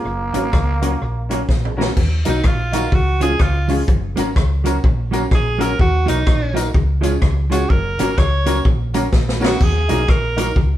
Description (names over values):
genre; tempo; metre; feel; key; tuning
ska; 126 BPM; 4/4; swing 61% on 8ths; F# major; A4 = 442 Hz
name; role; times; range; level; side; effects
growling trombone; melody; 0.0-1.8 s; A#3; -25 LUFS; right 3 dB; none
hollow-body short-scale fingered electric bass; bass; 0.0-10.8 s; F#1 to D#2; -20 LUFS; equal; none
clean electric guitar; accompaniment; 0.3-10.5 s; E#3 to F#4; -24 LUFS; right 2 dB; dub echo
warm upright piano; stabs; 0.3-10.6 s; C#4 to A#4; -26 LUFS; left 3 dB; none
swinging big-band drum kit; drums; 0.3-10.7 s; crash cymbal, hi-hat, kick drum, rim click, snare drum, splash cymbal, toms; -18 LUFS; equal; none
edgy alto saxophone; melody; 2.3-10.6 s; D#4 to C#5; -22 LUFS; right 2 dB; none
tambourine; percussion; 2.3-10.5 s; none; -40 LUFS; left 3 dB; none
room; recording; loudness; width
moderate stone room reverb, RT60 0.9 s; band playing live in one room; -15 LUFS; side -12 dB against mid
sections
0.0-2.0 A section; 2.0-10.8 B section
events
drum fill 1.5-2.0, 9.1-9.6; alto saxophone solo 2.0-10.8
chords
0.1 F#; 2.0 D#m; 2.9 C#; 3.9 F#; 5.8 D#m; 6.8 C#; 7.7 F#; 9.6 D#m